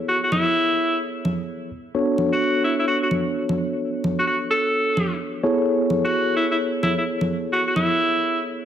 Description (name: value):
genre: UK garage, two-step garage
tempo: 129 BPM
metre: 4/4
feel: swing 64% on 16ths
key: unclear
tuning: A4 = 439 Hz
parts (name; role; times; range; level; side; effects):
- mellow tine electric piano; stabs; 0.0-8.7 s; B3 to C#5; -23 LUFS; equal; medium stereo tremolo, low-pass filter, tape echo
- bright alto saxophone; melody; 0.1-8.4 s; E4 to A4; -21 LUFS; equal; vintage 12-bit sampler grit, tape echo
- congas; drums; 0.3-7.9 s; none; -26 LUFS; right 2 dB; none
room: wet plate reverb, RT60 1.2 s, small room ambience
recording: dreamy mix soaked in reverb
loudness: -19 LUFS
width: side -9 dB against mid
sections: 0.0-8.7 A section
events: filter sweep on tine electric piano 0.0-8.7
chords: 0.0 Amaj7; 1.9 Bm9; 5.4 Amaj7